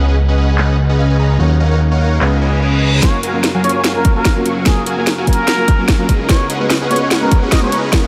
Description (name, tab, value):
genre	future bass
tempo	147 BPM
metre	4/4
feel	swing 54% on 16ths, half-time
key	F# major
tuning	A4 = 439 Hz
part	felt-muted upright piano	accompaniment	0.0-8.0 s	F#3 to B4	-25 LUFS	equal	sidechain pumping, analog delay
part	supersaw chords	riff	0.0-8.1 s	F#3 to C#6	-22 LUFS	equal	sidechain pumping, low-pass filter, analog delay
part	fat analog bass	bass	0.0-8.1 s	C#2 to D#2	-19 LUFS	equal	sidechain pumping, high-pass filter
part	trap drum kit	drums	0.6-8.0 s	handclaps, hi-hat, snare drum	-22 LUFS	equal	overdrive, low-pass filter on snare, low-pass filter on hats
part	reverse cymbal and riser	sound effects	2.4-8.1 s	none	-30 LUFS	equal	none
part	trumpet with plunger mute	melody	3.0-7.8 s	G#4 to D#5	-22 LUFS	equal	sidechain pumping, diffuse ambient delay
part	electronic kick drum	drums	3.0-8.0 s	none	-16 LUFS	equal	overdrive
room	moderate huge ambient reverb, RT60 7.1 s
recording	dreamy mix soaked in reverb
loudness	-14 LUFS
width	mono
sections	0.0-3.0 A section; 3.0-8.1 B section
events	reverse cymbal 2.4-3.0; build-up 3.0-8.1; drum fill 3.0-8.1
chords	0.0 C#7sus4; 1.4 D#m7; 2.2 C#7; 3.0 F#maj7; 6.1 C#7sus4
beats	0.17 0.58 0.99 | 1.40 1.80 2.21 2.62 | 3.03 3.44 3.85 4.25 | 4.66 5.07 5.48 5.89 | 6.29 6.70 7.11 7.52 | 7.93